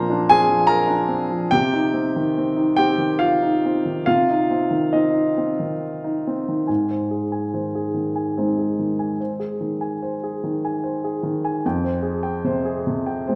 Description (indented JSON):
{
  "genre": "neoclassical minimalist piano",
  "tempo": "67-75 BPM",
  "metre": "3/4",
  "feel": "rubato",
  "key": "unclear",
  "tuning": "A4 = 440 Hz",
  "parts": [
    { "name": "warm baby grand piano", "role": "solo", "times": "0.0-13.4 s", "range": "F2 to C6", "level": "-21 LUFS", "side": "equal", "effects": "none" }
  ],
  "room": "wet recital hall reverb, RT60 1.5 s",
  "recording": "recorded in a church or concert hall",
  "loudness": "-21 LUFS",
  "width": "mono",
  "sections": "0.0-6.7 A section; 6.7-13.4 B section",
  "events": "none",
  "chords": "0.0 Bbadd9; 1.5 Cm; 6.7 Ab; 11.6 Fmadd9"
}